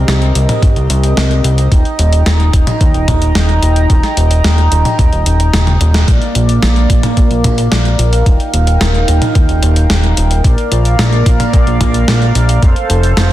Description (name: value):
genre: synthwave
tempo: 110 BPM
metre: 4/4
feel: straight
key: unclear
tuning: A4 = 441 Hz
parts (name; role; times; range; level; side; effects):
- chorused pulse-width pad; sustained chords; 0.0-13.3 s; Bb3 to Bb5; -16 LUFS; right 1 dB; sidechain pumping
- fat analog bass; bass; 0.0-13.3 s; Eb1 to Bb2; -11 LUFS; equal; sidechain pumping
- gated 80s digital drum machine; drums; 0.1-13.3 s; hi-hat, snare drum, toms; -17 LUFS; left 1 dB; gated reverb, gated reverb snare
- electronic kick drum; drums; 0.6-12.7 s; none; -11 LUFS; equal; none
room: little or no reverb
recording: dense, heavily limited modern master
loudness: -9 LUFS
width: side -14 dB against mid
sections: 0.0-6.1 A section; 6.1-13.3 B section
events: drum fill 5.5-6.1; band accent 5.9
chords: 0.0 Cm7; 1.7 Eb; 6.1 Bb; 8.3 Ebadd9; 10.4 Bb; 12.6 F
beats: 0.08 0.63 1.17 | 1.72 2.26 2.81 3.35 | 3.90 4.44 4.99 5.54 | 6.08 6.63 7.17 7.72 | 8.26 8.81 9.35 9.90 | 10.44 10.99 11.54 12.08 | 12.63 13.17